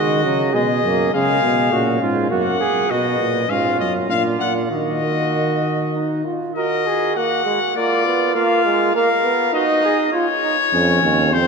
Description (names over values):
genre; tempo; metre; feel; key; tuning
classical, imitative canzona for brass ensemble; 101 BPM; 3/4; straight; Eb minor; A4 = 438 Hz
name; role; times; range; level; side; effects
bright trumpet; melody; 0.0-11.5 s; C5 to Gb5; -20 LUFS; left 7 dB; none
clear flugelhorn; second line; 0.0-10.0 s; E#4 to Bb4; -22 LUFS; right 4 dB; none
clear trombone; accompaniment; 0.0-11.5 s; F#3 to Gb4; -22 LUFS; right 2 dB; none
dark euphonium; bass; 0.0-6.2, 10.7-11.5 s; Eb2 to Eb3; -22 LUFS; right 2 dB; none
room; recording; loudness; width
wet church reverb, RT60 3.5 s; none; -16 LUFS; side -4 dB against mid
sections
0.0-6.6 A section; 6.6-11.5 B section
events
none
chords
0.0 D#m; 0.5 G#m/B; 1.1 C#; 2.3 F#; 2.9 B; 4.1 Bb; 4.7 Ebm; 6.6 Ebm/Gb; 7.8 Bb; 8.4 Bb5; 9.5 Ebm; 10.1 Dbadd9/Eb